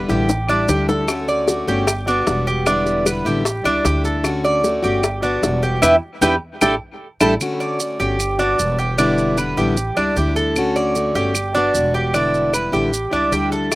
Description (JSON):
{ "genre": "latin, Cuban son and guajira", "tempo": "152 BPM", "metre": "4/4", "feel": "straight", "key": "D major", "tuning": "A4 = 440 Hz", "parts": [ { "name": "picked plugged-in steel-string acoustic guitar", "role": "accompaniment", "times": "0.0-13.8 s", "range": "B2 to F#4", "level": "-21 LUFS", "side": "left 2 dB", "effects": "none" }, { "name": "Cuban tres", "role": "arpeggios", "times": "0.0-13.8 s", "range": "D4 to D5", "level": "-19 LUFS", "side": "right 2 dB", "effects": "slapback echo" }, { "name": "upright bass", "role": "bass", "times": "0.0-13.8 s", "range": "E1 to E2", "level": "-24 LUFS", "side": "equal", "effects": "none" }, { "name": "bongos", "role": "percussion", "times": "0.1-7.3, 13.7-13.8 s", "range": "none", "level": "-24 LUFS", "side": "left 3 dB", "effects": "slapback echo" }, { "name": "maracas", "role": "percussion", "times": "0.1-13.8 s", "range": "none", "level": "-27 LUFS", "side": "right 4 dB", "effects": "none" }, { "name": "claves", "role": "percussion", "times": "0.5-13.8 s", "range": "none", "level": "-27 LUFS", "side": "left 4 dB", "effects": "none" } ], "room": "little or no reverb", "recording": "recorded outdoors, with no room sound", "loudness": "-16 LUFS", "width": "side -19 dB against mid", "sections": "0.0-7.4 A section; 7.4-13.8 A section", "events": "drum fill 0.1-1.1, 5.8-7.4; band accent 5.8-7.4", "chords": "0.3 A7sus4; 1.1 Dmaj7; 1.9 Gmaj7; 2.7 Em7; 3.5 A7sus4; 4.2 Dmaj7; 5.0 Gmaj7; 5.8 Em7; 6.6 A7sus4; 7.4 Dmaj7; 8.2 Gmaj7; 9.0 Em7; 9.8 A7sus4; 10.6 Dmaj7; 11.4 Gmaj7; 12.1 Em7; 12.9 A7sus4", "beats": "0.29 0.69 | 1.08 1.48 1.87 2.27 | 2.66 3.06 3.45 3.85 | 4.24 4.64 5.03 5.43 | 5.82 6.22 6.61 7.01 | 7.40 7.80 8.19 8.59 | 8.98 9.38 9.77 10.17 | 10.56 10.96 11.35 11.74 | 12.14 12.53 12.93 13.32 | 13.72" }